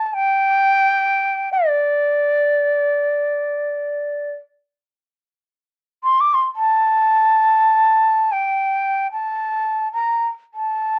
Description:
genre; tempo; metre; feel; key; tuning
Arabic maqam ensemble; free time; none; none; D maqam bayati; A4 = 440 Hz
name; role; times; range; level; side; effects
breathy ney; solo; 0.0-11.0 s; D5 to D6; -18 LUFS; equal; cassette tape
room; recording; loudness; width
wet studio ambience, RT60 0.5 s; home recording on cassette; -18 LUFS; mono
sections
0.0-5.2 A section; 5.2-11.0 A section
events
none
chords
none

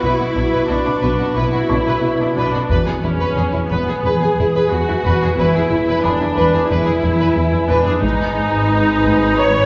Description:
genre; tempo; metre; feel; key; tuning
cinematic, suspense film score; 90 BPM; 4/4; straight; unclear; A4 = 441 Hz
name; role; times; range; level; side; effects
rich chamber violin section; melody; 0.0-9.7 s; D4 to B4; -24 LUFS; equal; none
clear studio viola section; accompaniment; 0.0-9.7 s; B3 to C#5; -21 LUFS; equal; none
glass harmonica; sustained chords; 0.0-9.7 s; F#4 to B5; -25 LUFS; equal; none
warm chamber cello section; riff; 0.0-9.6 s; E2 to B3; -25 LUFS; equal; none
rich chamber cello section; bass; 0.0-9.7 s; E2 to B2; -26 LUFS; equal; none
rich chamber double bass section; bass; 0.0-9.7 s; E1 to B1; -27 LUFS; equal; none
felt-muted upright piano; texture; 0.0-8.1 s; B5 to C#6; -31 LUFS; equal; none
rich chamber violin section; texture; 0.0-2.3 s; B5 to D6; -34 LUFS; equal; none
solo taiko drums; drums; 2.7-4.0, 8.0-9.4 s; none; -29 LUFS; equal; none
room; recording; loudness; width
wet recital hall reverb, RT60 1.8 s; recorded in a church or concert hall, vinyl crackle, nothing above 7.5 kHz; -17 LUFS; mono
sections
0.0-9.7 A section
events
none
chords
0.0 Bm; 2.7 E; 8.0 G#m

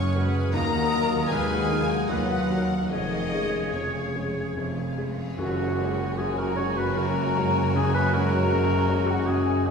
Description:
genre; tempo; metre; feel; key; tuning
cinematic, emotional film score for orchestra; 75 BPM; 3/4; uneven beats, rubato; F# major; A4 = 440 Hz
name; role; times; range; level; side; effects
rich studio violin section; melody; 0.0-9.7 s; C#5 to C#6; -33 LUFS; left 4 dB; none
clear oboe; second line; 0.0-5.0 s; C#5 to E#5; -38 LUFS; right 2 dB; none
mellow clarinet; second line; 0.0-9.7 s; C#4 to C#5; -32 LUFS; left 2 dB; none
mellow hollow flute section; second line; 0.0-9.7 s; C#5 to G#6; -32 LUFS; left 2 dB; none
rich studio violin section; second line; 0.0-9.7 s; E#4 to G#5; -38 LUFS; left 2 dB; none
clear baby grand piano; accompaniment; 0.0-9.7 s; E#1 to G#4; -30 LUFS; left 2 dB; none
rich studio viola section; accompaniment; 0.0-9.7 s; F#4 to C#5; -32 LUFS; equal; none
mellow French horn section; sustained chords; 0.0-9.7 s; C#3 to C#4; -31 LUFS; left 3 dB; none
clear studio double bass section; bass; 0.0-9.7 s; E#1 to D#2; -31 LUFS; right 4 dB; none
warm studio cello section; bass; 0.0-9.7 s; D#2 to F#2; -30 LUFS; right 2 dB; none
cymbal swell and tam-tam; percussion; 2.9-8.5 s; none; -38 LUFS; equal; none
room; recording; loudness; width
wet scoring stage reverb, RT60 1.5 s; heard from further back in the room; -22 LUFS; side -6 dB against mid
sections
0.0-5.4 A section; 5.4-9.7 B section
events
band accent 5.4-6.2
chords
0.0 F#sus2; 0.5 D#madd9; 2.9 C#/E#; 5.4 F#sus2

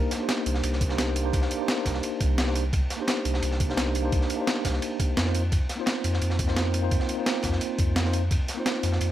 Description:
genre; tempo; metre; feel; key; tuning
liquid drum and bass; 172 BPM; 4/4; straight; C minor; A4 = 442 Hz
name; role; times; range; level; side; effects
tine electric piano; accompaniment; 0.0-9.1 s; Bb3 to C5; -29 LUFS; equal; medium stereo tremolo, tape echo
breakbeat sampler-style drum kit; drums; 0.1-9.1 s; hi-hat, snare drum; -30 LUFS; right 1 dB; none
crunchy breakbeat drum kit; drums; 0.1-9.1 s; ride cymbal, snare drum; -35 LUFS; equal; high-pass filter on cymbals, high-pass filter on snare, high-pass filter on room
warm sub bass; bass; 0.5-9.1 s; C2 to F2; -27 LUFS; equal; none
electronic kick drum; drums; 0.8-8.4 s; none; -27 LUFS; equal; none
room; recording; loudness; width
light reverb, small room ambience; none; -23 LUFS; side -13 dB against mid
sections
0.0-9.1 A section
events
none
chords
0.0 Cm9; 5.3 F7sus4

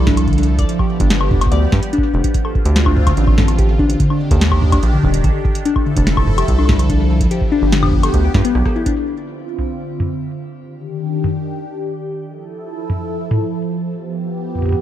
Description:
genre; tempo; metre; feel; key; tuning
IDM; 145 BPM; 4/4; straight; D dorian; A4 = 438 Hz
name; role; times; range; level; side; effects
phased analog pad; sustained chords; 0.0-14.8 s; D3 to A4; -22 LUFS; equal; phaser, chorus, shimmer reverb
rubbery square bass; bass; 0.0-8.6 s; Eb1 to G2; -15 LUFS; equal; none
harp-like synth pluck; arpeggios; 0.1-8.9 s; D3 to D5; -20 LUFS; left 3 dB; chorus, tape echo, shimmer reverb
booming analog drum machine; drums; 0.1-14.8 s; hi-hat, rim click, snare drum, toms, woodblock; -20 LUFS; equal; overdrive, low-pass filter on hats, low-pass filter on perc, low-pass filter on snare, low-pass filter on toms, low-pass filter on room
electronic kick drum; drums; 0.1-8.9 s; none; -18 LUFS; equal; overdrive
room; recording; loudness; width
light reverb, digital ambience; dark, warm production; -14 LUFS; side -12 dB against mid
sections
0.0-9.0 A section; 9.0-14.8 B section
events
drum fill 8.6-9.0; filter sweep on analog synth pad 9.0-14.8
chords
0.0 Fmaj7; 0.7 G7; 2.3 Dm7; 4.0 Ebmaj7; 5.7 Fmaj7; 7.3 G7; 9.0 Dm7; 10.6 Ebmaj7; 12.3 Fmaj7; 13.9 G7

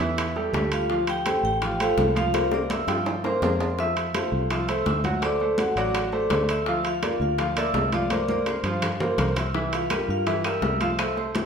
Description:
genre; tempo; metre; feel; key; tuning
latin, salsa; 166 BPM; 4/4; straight; unclear; A4 = 437 Hz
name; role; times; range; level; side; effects
vibraphone with medium hard mallets; melody; 0.0-11.5 s; F4 to E6; -28 LUFS; left 1 dB; none
bright concert grand piano; accompaniment; 0.0-11.5 s; E3 to G5; -27 LUFS; right 2 dB; none
fingered electric bass; bass; 0.0-11.5 s; A1 to G2; -29 LUFS; equal; none
bongos; percussion; 0.0-11.5 s; none; -33 LUFS; left 5 dB; none
timbales; percussion; 0.0-11.5 s; none; -32 LUFS; right 3 dB; none
congas; percussion; 0.2-11.5 s; none; -32 LUFS; left 1 dB; none
claves; percussion; 9.9-11.2 s; none; -37 LUFS; left 6 dB; none
room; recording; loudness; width
wet large studio reverb, RT60 1.2 s; minimal, uncompressed stereo recording; -22 LUFS; side -6 dB against mid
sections
0.0-11.5 A section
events
drum fill 2.3-3.8, 8.1-9.5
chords
0.0 A7(no3); 0.9 Dm7; 2.3 C7sus4; 3.8 Fmaj7; 5.2 D7; 6.7 C9sus4; 8.1 C7sus4; 9.5 C7

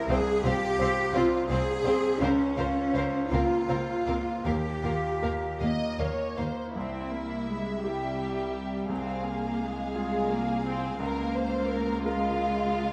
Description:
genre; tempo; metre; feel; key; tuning
cinematic; 52-58 BPM (dotted quarters); 6/8; rubato; F minor; A4 = 440 Hz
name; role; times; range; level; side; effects
bright concert grand piano; accompaniment; 0.0-12.9 s; C2 to C5; -34 LUFS; equal; none
rich symphonic cello section; bass; 0.0-12.9 s; C2 to Bb4; -32 LUFS; equal; none
clear studio violin section; melody; 0.1-12.9 s; E5 to F5; -42 LUFS; equal; none
warm studio violin section; second line; 0.1-12.9 s; E4 to Eb5; -38 LUFS; equal; none
rich symphonic viola section; accompaniment; 0.1-12.9 s; G3 to C5; -37 LUFS; equal; none
warm symphonic double bass section; bass; 0.1-6.5 s; C2 to Eb2; -36 LUFS; equal; none
room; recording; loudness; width
moderate scoring stage reverb, RT60 2.1 s; none; -28 LUFS; mono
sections
0.0-6.8 A section; 6.8-12.9 B section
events
none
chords
0.1 Fm/C; 2.2 Bbmadd9/Db; 4.5 Ebadd9; 6.8 C; 8.9 Fm/C; 11.0 Bbm/Db

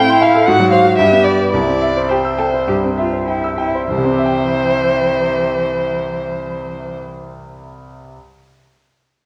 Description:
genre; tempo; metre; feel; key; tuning
quick classical-period movement for piano trio; 96-121 BPM; 4/4; rubato; C major; A4 = 440 Hz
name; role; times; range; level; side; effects
rich violin; melody; 0.0-7.0 s; C5 to G5; -19 LUFS; equal; none
rich cello; second line; 0.0-7.0 s; E3 to A4; -22 LUFS; equal; none
clear concert grand piano; accompaniment; 0.0-8.2 s; C2 to E6; -20 LUFS; equal; none
room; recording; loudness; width
wet recital hall reverb, RT60 1.4 s; worn, warbling old tape, cassette tape, warbly pitch drift; -15 LUFS; mono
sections
0.0-3.9 A section; 3.9-8.7 B section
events
slowing down 0.0-3.9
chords
0.5 Ab7; 1.0 G; 1.5 C

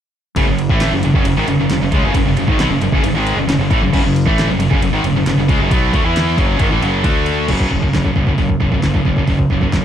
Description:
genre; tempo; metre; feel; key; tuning
heavy metal; 135 BPM; 4/4; straight; F# minor; A4 = 442 Hz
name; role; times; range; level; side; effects
distorted electric guitar; riff; 0.4-7.5 s; F#2 to E4; -20 LUFS; equal; overdrive
scooped high-gain guitar; riff; 0.4-9.8 s; F#2 to E4; -21 LUFS; left 10 dB; distortion
scooped high-gain guitar; riff; 0.4-9.8 s; F#2 to E4; -19 LUFS; right 8 dB; distortion
fuzz fingered electric bass; bass; 0.4-9.8 s; F#1 to E2; -20 LUFS; equal; overdrive
deep house drum kit; drums; 0.4-9.8 s; crash cymbal, hi-hat, kick drum, ride cymbal, snare drum; -18 LUFS; equal; none
room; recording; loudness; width
little or no reverb; dark, warm production; -13 LUFS; side -9 dB against mid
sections
0.4-7.5 A section; 7.5-9.8 B section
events
kick and snare drop out 6.6-7.5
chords
0.4 F#m; 7.0 D5; 7.5 F#5

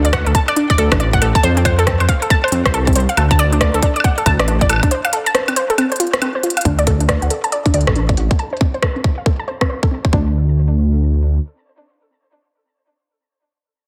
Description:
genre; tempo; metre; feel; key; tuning
IDM; 138 BPM; 4/4; swing 62% on 16ths; unclear; A4 = 441 Hz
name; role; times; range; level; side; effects
warbly dusty pluck; arpeggios; 0.0-10.3 s; C4 to A5; -21 LUFS; equal; chorus, delay
dark detuned saw bass; bass; 0.0-11.4 s; A1 to F2; -18 LUFS; equal; none
organic electronic drum kit; drums; 0.0-10.1 s; hi-hat, rim click, woodblock; -22 LUFS; equal; low-pass filter on hats, low-pass filter on perc, soft clipping on snare, low-pass filter on snare, low-pass filter on room
electronic kick drum; drums; 0.1-10.2 s; none; -20 LUFS; equal; none
room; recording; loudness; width
light reverb; dense, heavily limited modern master; -16 LUFS; mono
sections
0.0-6.7 A section; 6.7-10.1 B section; 10.1-13.6 C section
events
break 4.9-6.7; drum fill 6.4; filter sweep on drum 6.7-10.1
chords
0.0 D5; 1.4 F; 3.2 D5; 4.9 F; 6.7 D5; 8.4 F (rootless); 10.1 N.C.

